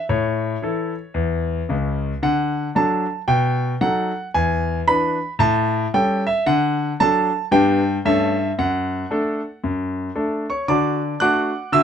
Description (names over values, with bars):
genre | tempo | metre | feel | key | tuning
jazz, stride piano | 113 BPM | 4/4 | swing 63% on 8ths | D major | A4 = 441 Hz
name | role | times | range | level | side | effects
clear concert grand piano | solo | 0.0-11.8 s | C#2 to F#6 | -18 LUFS | equal | none
room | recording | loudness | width
light reverb | close, detailed microphones | -18 LUFS | side -8 dB against mid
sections
0.0-10.7 A section; 10.7-11.8 A section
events
none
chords
0.1 A; 2.2 D; 3.3 B7; 4.3 E7; 5.4 A7; 6.5 D; 7.5 G; 8.0 A7/G; 8.6 D/F#; 10.7 D